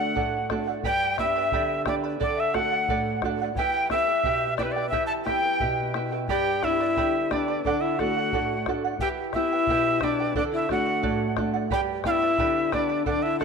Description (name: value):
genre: andean folk, Andean ensemble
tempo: 88 BPM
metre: 2/4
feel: straight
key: unclear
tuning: A4 = 440 Hz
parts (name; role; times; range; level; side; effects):
- breathy bright quena; melody; 0.0-13.4 s; B4 to A5; -26 LUFS; right 2 dB; none
- breathy reedy pan flute; second line; 0.0-13.4 s; D4 to A5; -29 LUFS; left 10 dB; none
- charango; accompaniment; 0.0-13.4 s; E4 to B5; -30 LUFS; right 12 dB; none
- nylon-string guitar; accompaniment; 0.0-13.4 s; G2 to G4; -31 LUFS; equal; none
- bombo; percussion; 0.2-13.4 s; none; -34 LUFS; left 3 dB; none
room: wet echo chamber reverb, RT60 2.1 s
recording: 1960s-style stereo with parts hard left and right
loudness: -22 LUFS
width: side -5 dB against mid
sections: 0.0-6.3 A section; 6.3-13.4 A section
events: none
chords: 0.0 D; 0.8 G; 2.2 D; 3.6 Em; 6.3 G; 7.6 D; 9.0 Em; 10.4 D; 11.7 G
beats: 0.16 | 0.84 1.52 | 2.20 2.88 | 3.56 4.24 | 4.92 5.60 | 6.28 6.96 | 7.64 8.31 | 8.99 9.67 | 10.35 11.03 | 11.71 12.39 | 13.07